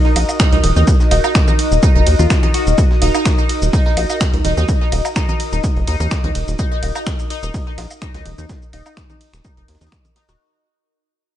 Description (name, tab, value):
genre	minimal techno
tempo	126 BPM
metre	4/4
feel	swing 54% on 16ths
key	Eb minor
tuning	A4 = 438 Hz
part	resonant blip pluck	riff	0.0-10.3 s	Eb4 to Gb4	-24 LUFS	right 2 dB	phaser, wide subtle chorus, sidechain pumping, ping-pong delay
part	airy breathy pad	texture	0.0-10.4 s	Eb4 to Eb5	-23 LUFS	left 3 dB	chorus, phaser, sidechain pumping
part	pulsing gated texture	texture	0.0-10.4 s	Gb4	-30 LUFS	right 5 dB	chorus, built-in reverb, sidechain pumping
part	breakbeat sampler-style drum kit	drums	0.1-10.4 s	hi-hat, snare drum	-34 LUFS	right 1 dB	none
part	rubbery square bass	bass	0.2-10.4 s	Eb1 to Eb2	-17 LUFS	equal	sidechain pumping
part	punchy analog drum machine	drums	0.2-10.4 s	finger snaps, hi-hat, ride cymbal, shaker	-24 LUFS	right 1 dB	none
part	woodblock and congas	percussion	0.2-10.4 s	none	-25 LUFS	right 1 dB	overdrive, digital delay
part	electronic kick drum	drums	0.4-10.0 s	none	-15 LUFS	equal	none
room	little or no reverb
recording	nothing above 10.9 kHz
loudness	-13 LUFS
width	side -12 dB against mid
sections	0.0-10.4 A section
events	drop 0.0-10.4; fade-out 2.8-10.4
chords	0.0 Ebm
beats	0.40 | 0.88 1.35 1.83 2.30 | 2.78 3.26 3.73 4.21 | 4.68 5.16 5.64 6.11 | 6.59 7.07 7.54 8.02 | 8.49 8.97 9.45 9.92